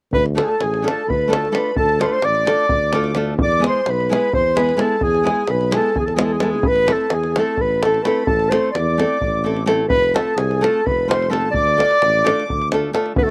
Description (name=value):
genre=balkan folk, Balkan wedding band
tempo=258 BPM (eighths)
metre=7/8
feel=straight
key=D dorian sharp4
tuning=A4 = 438 Hz
part: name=mellow clarinet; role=melody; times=0.1-13.3 s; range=G#4 to D5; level=-21 LUFS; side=equal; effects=none
part: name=accordion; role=second line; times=0.1-13.3 s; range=A3 to D6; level=-27 LUFS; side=equal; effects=light tremolo tuning, slapback echo
part: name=mellow tuba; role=bass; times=0.1-13.3 s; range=F1 to E2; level=-26 LUFS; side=equal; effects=none
part: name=davul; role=percussion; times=0.1-13.3 s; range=none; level=-26 LUFS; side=equal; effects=slapback echo
part: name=nylon-string guitar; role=accompaniment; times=0.3-13.1 s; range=G#3 to A4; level=-24 LUFS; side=equal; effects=slapback echo
room=little or no reverb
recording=recorded outdoors, with no room sound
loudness=-18 LUFS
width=mono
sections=0.1-13.2 A section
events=none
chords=0.1 Dm; 3.4 E; 6.6 Am; 9.9 F; 11.5 Dm